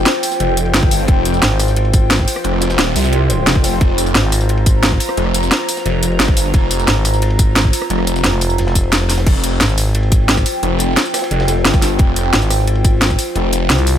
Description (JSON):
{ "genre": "dark technical drum and bass", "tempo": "176 BPM", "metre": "4/4", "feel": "straight", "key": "F minor", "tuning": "A4 = 440 Hz", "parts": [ { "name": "dark analog pad", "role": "sustained chords", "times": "0.0-14.0 s", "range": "F4 to Bb5", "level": "-21 LUFS", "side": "equal", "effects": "chorus, phaser, sidechain pumping" }, { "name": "phased detuned saw bass", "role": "bass", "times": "0.0-13.7 s", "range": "Eb1 to C2", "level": "-16 LUFS", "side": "equal", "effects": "phaser, sidechain pumping" }, { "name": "crunchy breakbeat drum kit", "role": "drums", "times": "0.1-14.0 s", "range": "ride cymbal, snare drum", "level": "-30 LUFS", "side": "equal", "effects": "high-pass filter on cymbals, high-pass filter on hats, high-pass filter on snare, high-pass filter on room" }, { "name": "drum and bass drum kit", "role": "drums", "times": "0.1-13.9 s", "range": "crash cymbal, hi-hat, rim click, snare drum, tambourine", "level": "-17 LUFS", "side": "equal", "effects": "overdrive" }, { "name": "electronic kick drum", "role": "drums", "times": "0.8-13.2 s", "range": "none", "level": "-14 LUFS", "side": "equal", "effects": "none" }, { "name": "growling FM bass", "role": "bass", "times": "1.4-14.0 s", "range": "F1 to C2", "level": "-15 LUFS", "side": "equal", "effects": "none" } ], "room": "small room ambience", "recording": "none", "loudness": "-12 LUFS", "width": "side -10 dB against mid", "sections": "0.0-9.3 A section; 9.3-14.0 A section", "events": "drop 0.0-9.3, 9.3-14.0; kick drops out 8.9-9.3", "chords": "0.0 Fm", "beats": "0.06 0.40 0.74 | 1.08 1.42 1.76 2.11 | 2.45 2.79 3.13 3.47 | 3.81 4.15 4.49 4.83 | 5.17 5.51 5.86 6.20 | 6.54 6.88 7.22 7.56 | 7.90 8.24 8.58 8.92 | 9.27 9.61 9.95 10.29 | 10.63 10.97 11.31 11.65 | 11.99 12.33 12.67 13.02 | 13.36 13.70" }